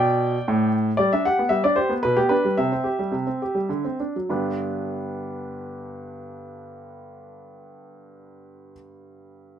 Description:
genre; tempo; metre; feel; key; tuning
classical-period piano sonatina; 99-116 BPM; 3/4; rubato; G major; A4 = 438 Hz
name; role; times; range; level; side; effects
clear baby grand piano; solo; 0.0-9.6 s; G2 to G5; -22 LUFS; equal; none
room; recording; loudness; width
light reverb; minimal, uncompressed stereo recording; -20 LUFS; side -9 dB against mid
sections
1.0-4.3 A section; 4.3-7.8 B section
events
slowing down 0.2-4.3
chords
0.0 G; 2.0 G/B; 2.6 C; 3.7 D7; 4.3 G

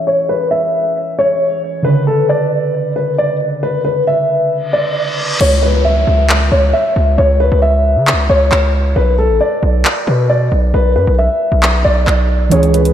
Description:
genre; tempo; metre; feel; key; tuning
hip hop, trap; 135 BPM; 4/4; half-time; unclear; A4 = 440 Hz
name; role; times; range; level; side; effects
muted felt-like synth keys; accompaniment; 0.0-5.4, 12.5-12.9 s; C#3 to B4; -18 LUFS; right 3 dB; chorus, low-pass filter
dark concert grand piano; melody; 0.1-12.9 s; A4 to E5; -14 LUFS; left 1 dB; low-pass filter, analog delay
reverse cymbal and downlifter; sound effects; 4.7-9.0 s; none; -23 LUFS; equal; none
distorted 808-style bass; bass; 5.4-12.9 s; A1 to C#3; -13 LUFS; equal; distortion
trap drum kit; drums; 5.4-12.9 s; crash cymbal, handclaps, hi-hat; -18 LUFS; equal; none
room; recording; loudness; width
wet plate reverb, RT60 2.4 s; dreamy mix soaked in reverb; -11 LUFS; side -10 dB against mid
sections
0.0-5.4 A section; 5.4-12.9 B section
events
reverse cymbal 4.7-5.4; hi-hats muted 5.4-12.5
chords
0.0 C#m; 1.9 Bmadd9; 5.4 C#m; 9.0 Bm

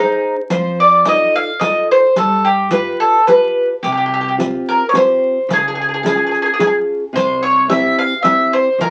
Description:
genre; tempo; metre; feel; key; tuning
italian folk, Italian serenade; 109 BPM; 3/4; straight; unclear; A4 = 440 Hz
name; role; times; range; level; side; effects
bowl-back mandolin; melody; 0.0-8.9 s; G4 to F5; -15 LUFS; equal; none
nylon-string guitar; accompaniment; 0.0-8.9 s; C3 to C5; -22 LUFS; equal; none
upright bass; bass; 0.5-8.9 s; C2 to G2; -37 LUFS; equal; none
riq; percussion; 0.5-8.9 s; none; -26 LUFS; equal; none
room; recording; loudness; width
moderate studio reverb, RT60 0.5 s; very old 78 rpm record, vinyl crackle; -14 LUFS; mono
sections
0.0-8.9 A section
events
none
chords
0.0 Ab; 0.5 F7; 2.2 G7; 3.8 Csus4; 5.5 Db; 7.1 C

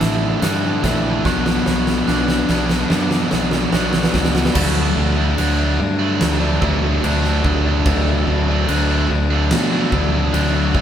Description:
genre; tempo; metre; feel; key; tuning
post-rock; 73 BPM; 4/4; straight; D major; A4 = 438 Hz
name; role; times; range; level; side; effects
pedal steel guitar; sustained chords; 0.0-10.8 s; F#4 to C#6; -34 LUFS; right 1 dB; none
electric guitar through a small old amp; arpeggios; 0.0-4.6 s; B2 to C#5; -27 LUFS; left 1 dB; spring reverb
glockenspiel with soft plastic mallets; arpeggios; 0.0-10.8 s; E6 to A6; -30 LUFS; right 2 dB; none
distorted electric guitar; riff; 0.0-10.8 s; A2 to D4; -23 LUFS; right 6 dB; overdrive
overdriven electric guitar; riff; 0.0-10.8 s; A2 to D4; -21 LUFS; left 4 dB; none
fingered electric bass; bass; 0.0-10.8 s; A1 to B2; -21 LUFS; equal; none
huge arena drum kit; drums; 0.0-10.8 s; crash cymbal, hi-hat, kick drum, snare drum; -21 LUFS; right 1 dB; none
room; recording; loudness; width
moderate studio ambience, RT60 0.5 s; band playing live in one room; -15 LUFS; side -9 dB against mid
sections
0.0-4.6 A section; 4.6-10.8 B section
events
build-up 0.0-4.6; drum fill 0.0-4.6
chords
0.0 Asus4; 1.3 Bmadd9; 4.6 D6

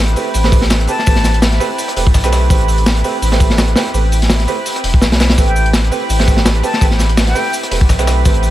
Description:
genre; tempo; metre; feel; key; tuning
drum and bass, jungle; 167 BPM; 4/4; swing 54% on 16ths; A minor; A4 = 439 Hz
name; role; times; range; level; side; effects
lush unison pad; sustained chords; 0.0-8.5 s; C4 to B4; -22 LUFS; equal; chorus
warm grand piano; stabs; 0.0-8.5 s; A3 to B4; -21 LUFS; right 6 dB; dub echo
saturated sub bass; bass; 0.0-8.5 s; E1 to B1; -14 LUFS; equal; none
crunchy breakbeat drum kit; drums; 0.1-8.5 s; hi-hat, kick drum, snare drum; -14 LUFS; equal; none
dusty soul sampler-style drum kit; drums; 0.2-8.5 s; hi-hat, shaker, snare drum; -25 LUFS; left 2 dB; high-pass filter on perc, high-pass filter on hats, high-pass filter on snare
breathy concert flute; melody; 0.9-1.4, 5.5-7.5 s; G5 to A5; -24 LUFS; left 2 dB; dub echo
room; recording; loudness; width
small room ambience; none; -11 LUFS; side -14 dB against mid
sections
0.0-8.5 A section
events
none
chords
0.0 Am9

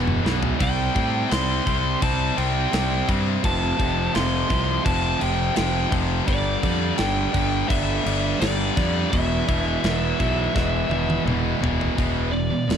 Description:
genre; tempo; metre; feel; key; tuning
heavy metal; 84 BPM; 4/4; straight; E phrygian; A4 = 436 Hz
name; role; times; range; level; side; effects
heavy high-gain guitar; riff; 0.0-12.8 s; E2 to C4; -27 LUFS; right 14 dB; distortion
high-gain distorted guitar; riff; 0.0-12.8 s; E2 to C4; -27 LUFS; left 17 dB; distortion
fuzz fingered electric bass; bass; 0.0-12.8 s; E1 to A2; -25 LUFS; equal; overdrive
tight metal drum kit; drums; 0.1-12.8 s; crash cymbal, kick drum, snare drum, toms; -27 LUFS; equal; none
high-gain lead guitar; melody; 0.6-12.8 s; D5 to C6; -27 LUFS; equal; distortion, tape echo
room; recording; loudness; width
little or no reverb; dark, warm production; -20 LUFS; side -8 dB against mid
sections
0.0-12.0 A section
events
drum fill 0.0-0.6, 10.6-12.0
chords
0.0 E5; 0.6 C5; 3.4 F; 6.3 G5; 9.1 E5

